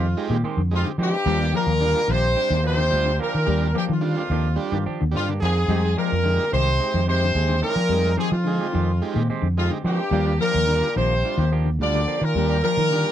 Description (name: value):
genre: afrobeat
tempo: 108 BPM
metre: 4/4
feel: straight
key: unclear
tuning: A4 = 442 Hz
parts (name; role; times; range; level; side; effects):
- bright horn section; melody; 0.0-13.1 s; F4 to D5; -24 LUFS; equal; none
- clear trumpet; second line; 0.0-13.1 s; F4 to D5; -32 LUFS; right 4 dB; none
- growling bass trombone; second line; 0.0-13.1 s; F2 to D3; -32 LUFS; left 14 dB; none
- electric guitar through a small old amp; arpeggios; 0.0-13.1 s; D3 to G3; -29 LUFS; left 10 dB; none
- semi-hollow electric guitar; stabs; 0.0-13.1 s; Eb3 to G4; -32 LUFS; right 8 dB; wide subtle chorus
- fingered electric bass; bass; 0.0-13.0 s; Bb1 to F3; -22 LUFS; equal; none
- overdriven combo organ; accompaniment; 0.2-13.1 s; G3 to Ab4; -30 LUFS; right 9 dB; none
room: little or no reverb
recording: dry, close 1970s-style studio recording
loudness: -19 LUFS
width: side -10 dB against mid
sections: 0.0-13.1 A section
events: none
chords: 0.0 Fm9; 1.3 Ebmaj9; 5.7 Fm9; 10.1 Ebmaj9